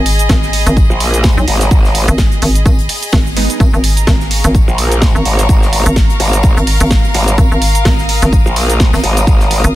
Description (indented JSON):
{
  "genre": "bass house",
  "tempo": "127 BPM",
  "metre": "4/4",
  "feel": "swing 56% on 16ths",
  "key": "unclear",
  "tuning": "A4 = 440 Hz",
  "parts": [
    { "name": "hollow knocking FM bass", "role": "bass", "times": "0.0-9.8 s", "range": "G#1 to B1", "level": "-13 LUFS", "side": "equal", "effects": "sidechain pumping" },
    { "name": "clear studio string section", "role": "texture", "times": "0.0-9.8 s", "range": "G#4 to D#6", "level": "-20 LUFS", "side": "equal", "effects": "sidechain pumping" },
    { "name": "house drum kit", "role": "drums", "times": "0.1-9.7 s", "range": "hi-hat, shaker, snare drum", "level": "-18 LUFS", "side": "right 1 dB", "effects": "none" },
    { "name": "modern studio drum kit", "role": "drums", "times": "0.1-9.6 s", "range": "hi-hat, snare drum, tambourine", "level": "-27 LUFS", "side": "left 6 dB", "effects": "sidechain pumping on hats, high-pass filter on hats, high-pass filter on snare, sidechain pumping on perc, high-pass filter on perc, high-pass filter on room" },
    { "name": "electronic kick drum", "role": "drums", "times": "0.3-9.4 s", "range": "none", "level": "-11 LUFS", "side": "equal", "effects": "none" },
    { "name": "growl bass", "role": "bass", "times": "0.9-9.6 s", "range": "G#1 to A#1", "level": "-13 LUFS", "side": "equal", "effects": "chorus, overdrive, sidechain pumping" },
    { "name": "orchestra-hit-like synth stab", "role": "stabs", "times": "3.4 s", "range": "G#3 to D#4", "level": "-20 LUFS", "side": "right 4 dB", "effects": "built-in reverb, sidechain pumping, ping-pong delay" }
  ],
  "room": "studio reverb",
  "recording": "dense, heavily limited modern master",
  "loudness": "-9 LUFS",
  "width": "side -15 dB against mid",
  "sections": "0.0-9.8 A section",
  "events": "none",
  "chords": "0.0 G#m; 3.6 A#m/G#",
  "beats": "0.29 0.77 1.24 | 1.71 2.19 2.66 3.13 | 3.60 4.08 4.55 5.02 | 5.49 5.96 6.44 6.91 | 7.38 7.86 8.33 8.80 | 9.27 9.74"
}